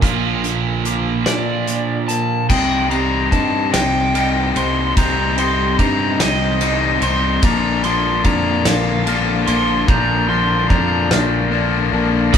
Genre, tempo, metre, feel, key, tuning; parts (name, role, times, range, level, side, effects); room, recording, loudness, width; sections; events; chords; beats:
post-rock; 49 BPM (dotted quarters); 6/8; straight; A4 = 441 Hz
electric guitar through a small old amp; arpeggios; 0.0-12.4 s; Bb2 to Eb4; -26 LUFS; equal; phaser
glockenspiel with soft plastic mallets; arpeggios; 0.0-12.4 s; D6 to A6; -29 LUFS; right 5 dB
cranked stack guitar; riff; 0.0-2.5, 12.3-12.4 s; Bb2 to F4; -20 LUFS; right 6 dB; overdrive
fingered electric bass; bass; 0.0-12.4 s; Bb1 to Bb2; -22 LUFS; equal
loose indie drum kit; drums; 0.0-12.4 s; crash cymbal, hi-hat, kick drum, ride cymbal, snare drum; -20 LUFS; equal
overdriven slide guitar; melody; 1.3-11.1 s; D5 to C6; -22 LUFS; equal; tape echo
crunchy overdriven guitar; riff; 2.5-12.3 s; Bb2 to Eb4; -18 LUFS; left 5 dB
moderate stone room reverb, RT60 1.2 s; band playing live in one room; -14 LUFS; side -8 dB against mid
0.0-2.5 A section; 2.5-12.3 B section
build-up 2.5-12.3
0.0 Bb; 2.5 Cm; 7.4 Bb
| 0.02 1.26 | 2.50 3.74 | 4.97 6.20 | 7.44 8.67 | 9.90 11.12 | 12.35